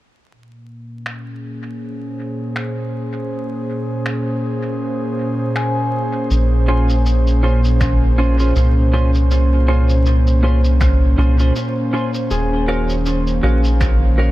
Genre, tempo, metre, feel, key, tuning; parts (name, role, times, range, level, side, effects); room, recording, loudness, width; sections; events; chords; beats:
ambient dub; 80 BPM; 4/4; swing 57% on 16ths; A4 = 443 Hz
airy breathy pad; sustained chords; 0.3-14.3 s; Bb2 to F5; -21 LUFS; equal; chorus, vintage 12-bit sampler grit
electronic finger snaps and shaker; drums; 1.1-14.0 s; -31 LUFS; equal; dub echo
Celtic harp; arpeggios; 5.6-7.6, 12.3-14.3 s; Ab4 to Ab5; -28 LUFS; left 3 dB; dub echo
round analog bass; bass; 6.3-14.3 s; Eb1 to C2; -14 LUFS; equal
clean electric guitar; stabs; 6.7-14.3 s; Db4 to F5; -24 LUFS; right 2 dB; lush chorus, dub echo
electronic kick drum; drums; 7.8-14.0 s; -21 LUFS; equal; overdrive
digital ambience; dark, warm production, vinyl crackle; -14 LUFS; side -16 dB against mid
0.3-6.3 A section; 6.3-14.3 B section
filter sweep on analog synth pad 0.3-6.3
0.3 Bbm7; 12.3 Ebm7
| 0.31 1.06 1.81 2.56 | 3.31 4.06 4.81 5.56 | 6.31 7.06 7.81 8.56 | 9.31 10.06 10.81 11.56 | 12.31 13.06 13.81